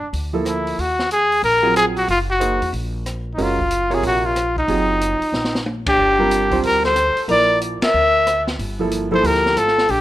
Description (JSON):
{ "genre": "modal jazz", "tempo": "185 BPM", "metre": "4/4", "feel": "swing 63% on 8ths", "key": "G dorian", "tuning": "A4 = 439 Hz", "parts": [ { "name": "clear trumpet", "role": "melody", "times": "0.0-10.0 s", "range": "D4 to E5", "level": "-16 LUFS", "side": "equal", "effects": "none" }, { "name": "upright bass", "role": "bass", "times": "0.0-10.0 s", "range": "Gb1 to E2", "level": "-27 LUFS", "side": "equal", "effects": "none" }, { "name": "open jazz drum kit", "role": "drums", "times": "0.1-10.0 s", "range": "hi-hat, kick drum, ride cymbal, rim click, snare drum, toms", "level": "-28 LUFS", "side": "equal", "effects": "none" }, { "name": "clear concert grand piano", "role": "accompaniment", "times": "0.3-9.5 s", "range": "C3 to Db5", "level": "-23 LUFS", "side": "right 3 dB", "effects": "none" }, { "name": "breathy alto saxophone", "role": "second line", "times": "5.9-10.0 s", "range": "D4 to Bb4", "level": "-25 LUFS", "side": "left 5 dB", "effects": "none" } ], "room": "moderate digital room reverb, RT60 1.2 s, small room ambience", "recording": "rough home demo mix", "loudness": "-16 LUFS", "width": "side -14 dB against mid", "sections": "0.0-10.0 A section", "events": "drum fill 5.3-6.0; band accent 5.8, 7.8", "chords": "0.0 Gm9 (rootless); 0.8 Ebmadd9; 6.0 Gm9", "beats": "0.13 0.46 | 0.78 1.11 1.43 1.76 | 2.08 2.41 2.73 3.06 | 3.38 3.71 4.03 4.36 | 4.68 5.01 5.33 5.66 | 5.98 6.31 6.63 6.96 | 7.28 7.61 7.93 8.26 | 8.58 8.91 9.23 9.56 | 9.89" }